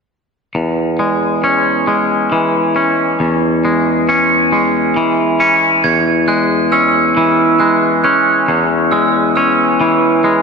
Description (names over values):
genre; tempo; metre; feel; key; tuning
rock; 45 BPM (dotted quarters); 6/8; straight; E major; A4 = 438 Hz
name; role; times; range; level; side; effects
twangy electric guitar; arpeggios; 0.6-10.4 s; E2 to C#4; -11 LUFS; left 1 dB; tape echo
glockenspiel with hard plastic mallets; arpeggios; 5.8-10.2 s; E6 to G#6; -16 LUFS; right 5 dB; tape echo, slapback echo
room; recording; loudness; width
wet lush hall reverb, RT60 2.1 s; big arena sound; -11 LUFS; side -5 dB against mid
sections
0.6-5.8 A section; 5.8-10.4 B section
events
none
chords
0.6 E6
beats
| 0.56 1.88 | 3.20 4.52 | 5.84 7.16 | 8.48 9.81